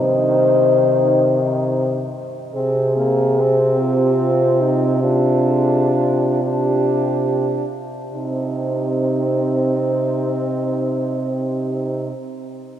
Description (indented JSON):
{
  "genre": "classical, lyrical piece for horn quartet",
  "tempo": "32-50 BPM (dotted quarters)",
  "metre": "6/8",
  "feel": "rubato",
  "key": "C minor",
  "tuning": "A4 = 440 Hz",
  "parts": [
    { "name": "mellow French horn", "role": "melody", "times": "0.0-12.1 s", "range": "F4 to C5", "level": "-23 LUFS", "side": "left 5 dB", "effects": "none" },
    { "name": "mellow French horn", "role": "second line", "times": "0.0-12.1 s", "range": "Eb4 to Ab4", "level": "-22 LUFS", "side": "right 5 dB", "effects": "none" },
    { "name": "warm French horn", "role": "accompaniment", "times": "0.0-12.1 s", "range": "Eb3 to D4", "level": "-23 LUFS", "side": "left 1 dB", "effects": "none" },
    { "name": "warm French horn", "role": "bass", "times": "0.0-12.1 s", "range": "C3", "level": "-21 LUFS", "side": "right 1 dB", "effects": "none" }
  ],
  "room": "wet cathedral reverb, RT60 6.1 s",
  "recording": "none",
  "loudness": "-16 LUFS",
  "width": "side -10 dB against mid",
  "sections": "0.0-2.5 A section; 2.5-8.1 B section; 8.1-11.4 C section",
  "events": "slowing down 1.2-8.1",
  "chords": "0.0 Cm; 2.5 Fm/C; 5.0 G5/C; 8.1 Cm"
}